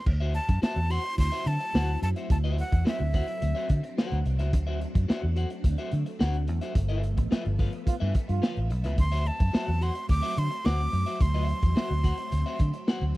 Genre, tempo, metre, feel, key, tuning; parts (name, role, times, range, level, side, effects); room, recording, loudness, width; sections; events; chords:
funk; 108 BPM; 4/4; straight; A4 = 440 Hz
breathy bright jazz flute; melody; 0.0-3.9, 9.0-13.2 s; E5 to D6; -32 LUFS; right 1 dB
electric guitar at the edge of break-up; accompaniment; 0.1-13.0 s; F4 to F#5; -37 LUFS; left 3 dB; spring reverb
phased string machine; sustained chords; 0.1-13.2 s; F3 to E5; -39 LUFS; right 1 dB; ensemble chorus, phaser
vintage muted fingered electric bass; bass; 0.1-13.1 s; G1 to D3; -26 LUFS; equal
crunchy breakbeat drum kit; drums; 0.1-13.2 s; crash cymbal, hi-hat, kick drum, snare drum; -25 LUFS; equal
breathy trombone; second line; 7.9-8.7 s; F4; -35 LUFS; right 8 dB
little or no reverb; dry, close 1970s-style studio recording; -24 LUFS; side -18 dB against mid
0.1-13.2 A section
band accent 6.8-9.0
0.1 D9; 6.8 G13; 9.0 D9